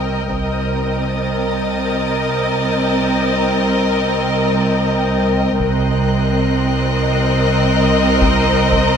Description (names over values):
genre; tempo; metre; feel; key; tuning
cinematic, suspense film score; free time; none; none; C minor; A4 = 440 Hz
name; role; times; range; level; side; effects
rich studio violin section; melody; 0.0-9.0 s; Eb5; -22 LUFS; left 4 dB; none
warm symphonic violin section; second line; 0.0-9.0 s; Bb4; -23 LUFS; right 1 dB; none
warm studio viola section; accompaniment; 0.0-9.0 s; C4; -21 LUFS; equal; none
shimmering ambient pad; sustained chords; 0.0-9.0 s; Bb4 to G5; -23 LUFS; left 2 dB; chorus, built-in reverb
warm studio cello section; bass; 0.0-9.0 s; C2; -21 LUFS; right 3 dB; none
warm studio double bass section; bass; 0.0-9.0 s; C2; -22 LUFS; right 2 dB; none
taiko ensemble; drums; 0.3-1.6, 5.6-9.0 s; none; -23 LUFS; left 1 dB; none
rich studio violin section; texture; 0.3-9.0 s; C6 to A6; -28 LUFS; equal; none
room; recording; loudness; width
moderate scoring stage reverb, RT60 2.1 s; none; -14 LUFS; side -7 dB against mid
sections
0.0-9.0 A section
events
none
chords
0.0 Cm7